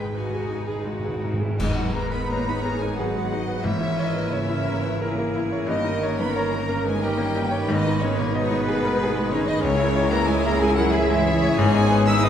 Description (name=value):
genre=classical, romantic movement for piano and orchestra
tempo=80-95 BPM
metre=3/4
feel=rubato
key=G# minor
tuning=A4 = 440 Hz
part: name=clear grand piano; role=melody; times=0.0-12.3 s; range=C#2 to D#5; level=-26 LUFS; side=left 2 dB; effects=none
part: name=rich chamber violin section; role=melody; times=0.0-12.3 s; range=A#4 to E6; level=-31 LUFS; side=left 4 dB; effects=none
part: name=clear chamber violin section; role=second line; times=0.0-12.3 s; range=D#4 to E5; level=-33 LUFS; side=left 3 dB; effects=none
part: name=clear symphonic viola section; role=accompaniment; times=0.0-12.3 s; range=G#3 to E4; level=-32 LUFS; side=equal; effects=none
part: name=rich chamber double bass section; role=bass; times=0.0-12.3 s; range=G1 to C#2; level=-30 LUFS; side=right 4 dB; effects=none
part: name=warm chamber cello section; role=bass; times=0.0-12.3 s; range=A#2 to G#4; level=-29 LUFS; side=equal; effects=none
part: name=timpani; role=percussion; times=0.0-12.3 s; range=G#2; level=-33 LUFS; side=right 1 dB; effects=none
part: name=large flute ensemble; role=second line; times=1.6-12.3 s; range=A#4 to E6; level=-31 LUFS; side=right 1 dB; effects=none
part: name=warm clarinet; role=second line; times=1.6-12.3 s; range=A#3 to E5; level=-32 LUFS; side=left 2 dB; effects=none
part: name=dark trombone section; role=sustained chords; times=1.6-12.3 s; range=C#3 to A#3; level=-32 LUFS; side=right 4 dB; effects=none
part: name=mellow French horn section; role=sustained chords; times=1.6-12.3 s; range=B3 to G#4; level=-31 LUFS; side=left 3 dB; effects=none
part: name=dark trumpet section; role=stabs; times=1.6-12.3 s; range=G#4 to B4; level=-31 LUFS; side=right 2 dB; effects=none
part: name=clash cymbals and concert bass drum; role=percussion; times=1.6-2.9 s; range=none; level=-34 LUFS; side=right 1 dB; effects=none
room=wet scoring stage reverb, RT60 1.7 s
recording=dark, warm production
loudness=-20 LUFS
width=side -9 dB against mid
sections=0.0-1.6 A section; 1.6-12.3 A section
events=timpani fill 0.0-1.6; band accent 1.6-2.3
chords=0.0 G#m; 3.6 A#m7b5/G#; 5.7 D#7/G; 7.7 G#m; 9.7 C#m; 11.6 G#m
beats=0.13 0.85 | 1.59 2.29 2.97 | 3.64 4.32 5.00 | 5.68 6.36 7.03 | 7.70 8.36 9.01 | 9.65 10.29 10.93 | 11.57 12.23